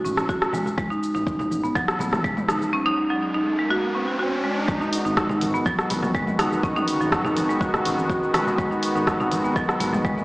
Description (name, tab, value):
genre	afro house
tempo	123 BPM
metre	4/4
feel	straight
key	G# phrygian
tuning	A4 = 440 Hz
part	marimba with hard mallets	arpeggios	0.0-10.1 s	F#3 to F#4	-24 LUFS	equal	sidechain pumping, digital delay
part	dark detuned saw bass	bass	0.0-10.2 s	D#1 to A1	-33 LUFS	equal	sidechain pumping
part	deep house drum kit	drums	0.1-10.2 s	cabasa, hi-hat, rim click, toms	-26 LUFS	equal	studio reverb
part	congas	percussion	0.1-10.2 s	none	-33 LUFS	equal	none
part	electronic kick drum	drums	0.3-10.1 s	none	-28 LUFS	equal	studio reverb
part	riser	sound effects	2.3-4.7 s	none	-30 LUFS	equal	none
part	warm analog pad	sustained chords	4.7-10.2 s	D#3 to F#4	-26 LUFS	equal	chorus, tremolo, sidechain pumping
room	wet lush hall reverb, RT60 2.0 s, digital ambience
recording	played on a big sound system in a bare room, stone room reverb, small speaker sound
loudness	-20 LUFS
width	side -21 dB against mid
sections	0.0-4.7 A section; 4.7-10.2 B section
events	filter sweep on marimba 0.0-4.7; riser 2.3-4.7; drop 4.7-10.2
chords	0.0 N.C.; 4.7 G#m7